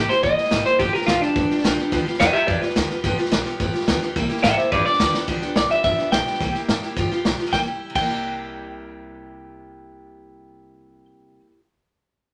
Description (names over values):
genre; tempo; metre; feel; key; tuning
rockabilly; 214 BPM; 4/4; straight; unclear; A4 = 440 Hz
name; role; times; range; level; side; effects
electric guitar through a small old amp; melody; 0.0-11.1 s; D4 to G5; -22 LUFS; equal; none
picked steel-string acoustic guitar; accompaniment; 0.0-11.6 s; G2 to G4; -29 LUFS; equal; none
upright bass; bass; 0.0-11.0 s; G1 to Bb2; -34 LUFS; equal; none
vintage drum kit; drums; 0.1-8.0 s; crash cymbal, hi-hat, kick drum, snare drum; -26 LUFS; equal; none
room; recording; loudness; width
light reverb; none; -21 LUFS; mono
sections
0.0-5.3 A section; 5.3-7.5 B section; 7.5-9.8 C section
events
drum fill 5.1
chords
0.0 C7; 0.8 G7; 4.2 C7; 4.7 G7; 6.4 C7; 7.0 G7; 7.5 C7